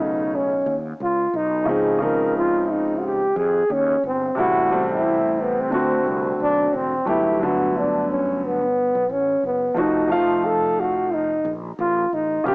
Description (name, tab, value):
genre	hip hop, jazz-hop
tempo	89 BPM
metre	4/4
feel	swing 58% on 16ths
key	unclear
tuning	A4 = 440 Hz
part	breathy trombone	melody	0.0-12.5 s	Cb4 to Bb4	-20 LUFS	equal	cassette tape
part	dark baby grand piano	accompaniment	0.0-12.5 s	C3 to F5	-22 LUFS	equal	none
part	fretless electric bass	bass	0.0-12.5 s	E1 to F2	-31 LUFS	equal	none
room	light reverb, small room ambience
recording	home recording on cassette, small speaker sound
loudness	-18 LUFS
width	side -35 dB against mid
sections	0.0-12.5 A section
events	none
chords	0.0 B9; 1.7 Dbmaj9; 4.4 Am7; 5.7 D7; 7.1 Gmaj9; 9.8 F7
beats	0.33 1.00 | 1.67 2.35 3.02 3.70 | 4.37 5.04 5.72 6.39 | 7.07 7.74 8.41 9.09 | 9.76 10.44 11.11 11.79 | 12.46